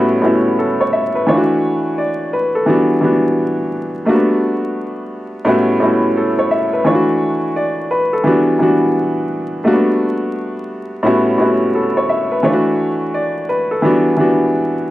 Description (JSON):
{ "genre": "hip hop", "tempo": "86 BPM", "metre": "4/4", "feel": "swing 63% on 16ths", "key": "D major", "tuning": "A4 = 440 Hz", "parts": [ { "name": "warm upright piano", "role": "solo", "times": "0.0-14.9 s", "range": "A2 to E5", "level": "-13 LUFS", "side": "equal", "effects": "high-pass filter, low-pass filter, slapback echo" } ], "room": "moderate spring reverb, RT60 2.3 s", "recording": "vinyl crackle", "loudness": "-13 LUFS", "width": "side -15 dB against mid", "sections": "0.0-12.4 A section; 12.4-14.9 B section", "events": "none", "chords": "0.0 A13; 1.3 Dmaj9; 2.7 Em9; 4.1 Gmaj9; 5.5 A13; 6.9 Dmaj9; 8.3 Em9; 9.7 Gmaj9; 11.1 A13; 12.4 Dmaj9; 13.8 Em9" }